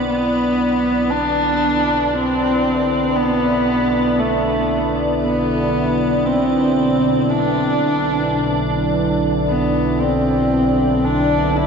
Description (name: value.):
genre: dark ambient drone.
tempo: free time.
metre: none.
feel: none.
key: B phrygian.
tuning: A4 = 440 Hz.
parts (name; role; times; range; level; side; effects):
rich horsehead fiddle; melody; 0.0-11.7 s; A3 to E4; -18 LUFS; equal; diffuse ambient delay.
sweeping resonant pad; sustained chords; 0.0-11.7 s; D4 to B4; -24 LUFS; right 1 dB; chorus.
analog drone; drone; 0.0-11.7 s; B1 to D3; -23 LUFS; equal; chorus.
icy glass pad; texture; 0.0-11.7 s; D5; -24 LUFS; equal; chorus, built-in reverb.
room: wet huge ambient reverb, RT60 8.3 s.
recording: cassette tape, nothing above 7.7 kHz.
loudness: -15 LUFS.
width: side -6 dB against mid.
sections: 0.0-11.7 A section.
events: fade-in on synth drone 0.0-11.7; fade-in on analog synth pad 0.0-11.7.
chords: 0.0 Bm.